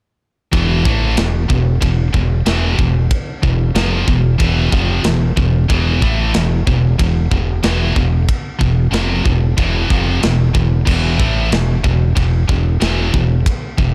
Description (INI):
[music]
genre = heavy metal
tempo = 93 BPM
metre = 4/4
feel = straight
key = unclear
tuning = A4 = 442 Hz
[part]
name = scooped high-gain guitar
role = riff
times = 0.5-13.9 s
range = E2 to A3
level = -19 LUFS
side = equal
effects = distortion
[part]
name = growling fingered electric bass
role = bass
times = 0.5-13.9 s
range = E1 to A1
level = -20 LUFS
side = equal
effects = overdrive
[part]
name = tight metal drum kit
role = drums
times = 0.5-13.9 s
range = crash cymbal, kick drum, ride cymbal, snare drum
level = -21 LUFS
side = equal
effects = none
[sound]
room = little or no reverb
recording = dark, warm production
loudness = -15 LUFS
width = mono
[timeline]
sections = 0.5-13.9 A section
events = none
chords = 0.5 E5